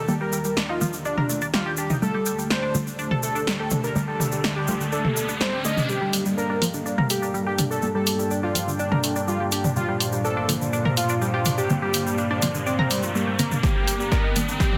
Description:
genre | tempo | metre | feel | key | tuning
melodic techno | 124 BPM | 4/4 | straight | G minor | A4 = 440 Hz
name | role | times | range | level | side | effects
fat analog lead | melody | 0.0-14.8 s | Bb3 to Eb5 | -30 LUFS | equal | subtle chorus, sidechain pumping, dub echo
warm analog pad | sustained chords | 0.0-14.8 s | Bb2 to Bb5 | -32 LUFS | equal | chorus, sidechain pumping
filtered dub chord stab | stabs | 0.0-14.8 s | D3 to C4 | -32 LUFS | equal | phaser, cassette tape, sidechain pumping, tape echo
tight sequenced synth | arpeggios | 0.1-14.8 s | D3 to Bb4 | -32 LUFS | equal | chorus, phaser, vintage 12-bit sampler grit, sidechain pumping, tape echo
egg shaker | percussion | 0.1-14.7 s | none | -35 LUFS | equal | none
punchy analog drum machine | drums | 0.6-14.8 s | hi-hat, snare drum, toms | -28 LUFS | equal | none
riser | sound effects | 3.8-14.8 s | none | -36 LUFS | equal | none
analog drone | drone | 6.3-14.8 s | G2 to D4 | -36 LUFS | equal | chorus, sidechain pumping
electronic kick drum | drums | 13.6-14.7 s | none | -25 LUFS | equal | none
room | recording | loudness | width
moderate huge ambient reverb, RT60 5.7 s | dense, heavily limited modern master | -24 LUFS | mono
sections
0.0-5.9 A section; 5.9-14.8 B section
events
filter sweep on analog synth pad 0.0-5.9; riser 3.8-5.9, 5.9-14.8; build-up 5.9-14.8; drum fill 13.6-14.8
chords
0.0 Eb; 2.0 Dsus4; 5.9 Gm7; 9.8 Bbadd9; 13.6 Eb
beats
| 0.09 0.57 1.05 1.54 | 2.02 2.50 2.99 3.47 | 3.96 4.44 4.92 5.41 | 5.89 6.38 6.86 7.34 | 7.83 8.31 8.79 9.28 | 9.76 10.25 10.73 11.21 | 11.70 12.18 12.67 13.15 | 13.63 14.12 14.60

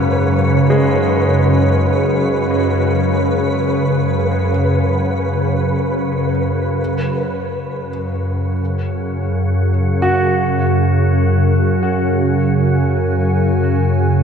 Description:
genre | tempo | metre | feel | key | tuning
dark ambient drone | free time | none | none | unclear | A4 = 440 Hz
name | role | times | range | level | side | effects
dark analog pad | sustained chords | 0.0-14.2 s | C#4 to G#5 | -26 LUFS | equal | chorus
warm concert grand piano | arpeggios | 0.0-14.2 s | G#2 to F#4 | -23 LUFS | equal | ping-pong delay
organ-like drone | drone | 0.0-14.2 s | F#2 to C#3 | -15 LUFS | equal | ensemble chorus, built-in reverb
flickering grainy texture | texture | 0.0-6.8 s | B4 | -23 LUFS | right 1 dB | built-in reverb
room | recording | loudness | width
wet cathedral reverb, RT60 6.5 s | none | -14 LUFS | side -7 dB against mid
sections
0.0-6.8 A section; 6.8-14.2 B section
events
fade-out on analog synth pad 0.0-6.8; fade-in on analog synth pad 6.8-14.2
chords
0.0 F#5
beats
free time

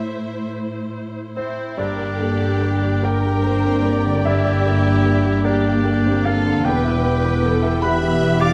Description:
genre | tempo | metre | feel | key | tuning
cinematic | 47-51 BPM (dotted quarters) | 6/8 | rubato | G dorian | A4 = 440 Hz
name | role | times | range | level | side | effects
clear studio violin section | melody | 0.0-8.5 s | C5 to D6 | -36 LUFS | equal | none
clear baby grand piano | accompaniment | 0.0-8.5 s | E2 to D6 | -25 LUFS | equal | none
warm studio viola section | accompaniment | 0.0-8.5 s | Bb3 to D5 | -30 LUFS | equal | none
dark studio cello section | bass | 0.0-8.5 s | E2 to A2 | -26 LUFS | equal | none
warm oboe | second line | 1.4-8.5 s | C4 to D5 | -30 LUFS | equal | none
warm studio violin section | second line | 1.4-8.5 s | E4 to F5 | -30 LUFS | equal | none
mellow French horn section | sustained chords | 1.8-8.5 s | Bb3 to E4 | -26 LUFS | equal | none
concert harp | arpeggios | 1.8-8.5 s | G2 to G5 | -31 LUFS | equal | none
warm studio double bass section | bass | 1.8-8.5 s | E1 to G1 | -26 LUFS | equal | none
room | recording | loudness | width
moderate scoring stage reverb, RT60 1.7 s | none | -19 LUFS | mono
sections
0.0-1.8 A section; 1.8-8.5 A section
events
none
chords
0.0 Am; 1.8 Gm; 6.7 Em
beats
0.53 | 1.78 3.04 | 4.26 5.46 | 6.65 7.83

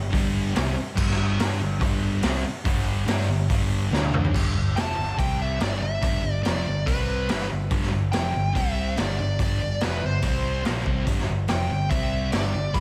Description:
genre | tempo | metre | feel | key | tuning
hard rock | 142 BPM | 4/4 | straight | unclear | A4 = 441 Hz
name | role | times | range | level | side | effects
sludgy distorted guitar | riff | 0.0-12.8 s | F2 to G4 | -33 LUFS | equal | overdrive, slapback echo
sludgy distorted guitar | riff | 0.0-12.8 s | F2 to G4 | -32 LUFS | equal | overdrive, slapback echo
hollow-body short-scale picked electric bass | bass | 0.0-12.8 s | F1 to G2 | -30 LUFS | equal | none
raw garage drum kit | drums | 0.1-12.8 s | crash cymbal, hi-hat, kick drum, snare drum, toms | -28 LUFS | equal | none
dark smooth lead guitar | melody | 4.8-12.8 s | B4 to B5 | -32 LUFS | equal | overdrive, digital delay
room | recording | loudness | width
light reverb, small room ambience | none | -24 LUFS | mono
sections
0.0-4.3 A section; 4.3-12.8 B section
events
drum fill 3.9-4.3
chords
0.0 G5; 3.9 D5; 4.3 G5; 5.2 C5; 5.6 G5; 6.9 C5; 7.3 G5; 8.6 C5; 9.0 G5; 10.2 C5; 10.7 G5; 11.9 C5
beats
0.12 0.55 | 0.97 1.39 1.81 2.23 | 2.65 3.08 3.50 3.92 | 4.34 4.77 5.19 5.61 | 6.03 6.46 6.88 7.30 | 7.72 8.14 8.56 8.98 | 9.40 9.82 10.24 10.66 | 11.08 11.50 11.92 12.34 | 12.75

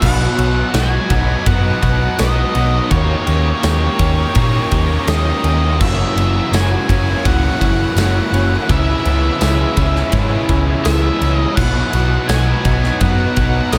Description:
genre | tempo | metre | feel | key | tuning
rock, shoegaze and dream pop | 83 BPM | 4/4 | straight | B major | A4 = 440 Hz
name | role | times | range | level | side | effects
octave-fuzz lead guitar | melody | 0.0-13.8 s | C#5 to G#5 | -25 LUFS | equal | distortion, delay
evolving wavetable pad | sustained chords | 0.4-13.8 s | D#4 to B5 | -31 LUFS | equal | none
direct-recorded clean electric guitar | arpeggios | 0.0-13.8 s | E3 to G#4 | -31 LUFS | equal | none
overdriven electric guitar | riff | 0.0-13.8 s | F#2 to G4 | -26 LUFS | equal | reverse reverb
raw garage guitar | riff | 0.0-13.8 s | F#2 to G4 | -25 LUFS | equal | overdrive, ensemble chorus
tight distorted guitar | riff | 0.0-13.8 s | F#2 to D#4 | -28 LUFS | equal | distortion
hollow-body short-scale picked electric bass | bass | 0.0-13.8 s | F#1 to A#2 | -19 LUFS | equal | none
big rock drum kit | drums | 0.0-13.8 s | crash cymbal, kick drum, ride cymbal, snare drum | -22 LUFS | equal | none
tambourine | percussion | 0.7-13.8 s | none | -34 LUFS | equal | none
room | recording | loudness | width
light reverb, small room ambience | none | -15 LUFS | mono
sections
0.0-13.8 A section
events
none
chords
0.0 Bmaj7; 2.9 D#7; 5.8 F#7sus4; 8.7 C#m7; 11.6 Bmaj7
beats
| 0.02 0.74 1.47 2.19 | 2.91 3.64 4.36 5.08 | 5.80 6.53 7.25 7.97 | 8.69 9.41 10.13 10.85 | 11.57 12.29 13.02 13.74

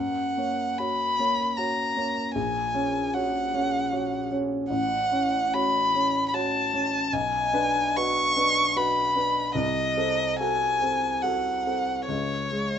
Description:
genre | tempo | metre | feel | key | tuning
classical, romantic duo for violin and grand piano | 69-78 BPM | 3/4 | rubato | F# minor from 4.7 s | A4 = 440 Hz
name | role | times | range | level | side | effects
warm violin | melody | 0.0-12.8 s | C#5 to C#6 | -24 LUFS | left 1 dB | none
warm grand piano | accompaniment | 0.0-12.8 s | A1 to Db5 | -28 LUFS | equal | none
room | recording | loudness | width
light reverb | nothing above 8.0 kHz | -23 LUFS | side -8 dB against mid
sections
0.0-12.8 A section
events
none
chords
0.0 Gb; 2.4 Gb/Bb; 4.7 F#m/A; 7.1 G#m7b5/B; 9.6 Cdim7; 12.1 C#5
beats
0.79 1.58 | 2.35 3.14 3.92 | 4.71 5.54 6.34 | 7.13 7.96 8.76 | 9.55 10.40 11.23 | 12.07

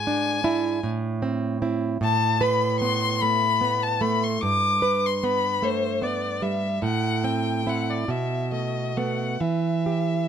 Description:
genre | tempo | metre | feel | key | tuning
romantic duo for violin and classical guitar | 44-52 BPM (dotted quarters) | 6/8 | rubato | unclear | A4 = 444 Hz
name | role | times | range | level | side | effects
rich violin | melody | 0.0-10.3 s | C5 to D6 | -25 LUFS | left 5 dB | none
nylon-string guitar | accompaniment | 0.0-10.3 s | G2 to B4 | -24 LUFS | right 3 dB | none
room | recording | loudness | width
light reverb | none | -22 LUFS | side -8 dB against mid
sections
0.0-10.3 A section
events
none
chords
0.0 E7/G#; 0.8 Am; 2.0 Amadd9; 4.4 Gadd9; 6.8 Am6; 8.1 B7; 9.4 Em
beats
0.83 | 2.00 3.20 | 4.41 5.60 | 6.82 8.07 | 9.39

